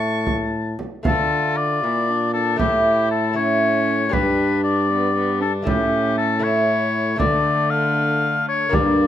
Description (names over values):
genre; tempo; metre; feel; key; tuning
classical, renaissance-style consort dance; 78 BPM (dotted quarters); 6/8; straight; D harmonic minor; A4 = 442 Hz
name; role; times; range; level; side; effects
clear oboe; melody; 0.0-9.1 s; G4 to A5; -21 LUFS; left 4 dB; none
dark violin; second line; 0.0-9.1 s; A3 to C#6; -28 LUFS; right 3 dB; none
lute; accompaniment; 0.0-9.1 s; G2 to B4; -23 LUFS; equal; none
clear trombone; bass; 0.0-9.1 s; G2 to D3; -24 LUFS; equal; none
frame drum; percussion; 0.3-9.0 s; none; -23 LUFS; right 2 dB; none
room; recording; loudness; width
light reverb; close, detailed microphones; -17 LUFS; side -11 dB against mid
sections
0.0-1.1 A section; 1.1-9.1 B section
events
none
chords
0.0 A; 1.1 Dm; 2.6 A; 4.1 G; 5.7 A; 7.2 Dm